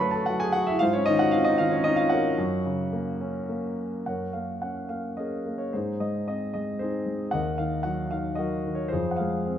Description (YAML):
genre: classical, lyrical solo piano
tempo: 104-116 BPM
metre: 3/4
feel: rubato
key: Gb lydian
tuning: A4 = 438 Hz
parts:
  - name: warm concert grand piano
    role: solo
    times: 0.0-9.6 s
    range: Eb2 to Db6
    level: -24 LUFS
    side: equal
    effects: none
room: moderate concert hall reverb, RT60 1.9 s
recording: none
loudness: -24 LUFS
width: side -10 dB against mid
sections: 0.0-4.1 A section; 4.1-9.6 B section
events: none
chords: 0.0 D/F#; 0.8 Ab6; 2.4 Gb; 4.1 Gbadd9; 5.7 Ab; 7.3 Ebm; 8.9 Fm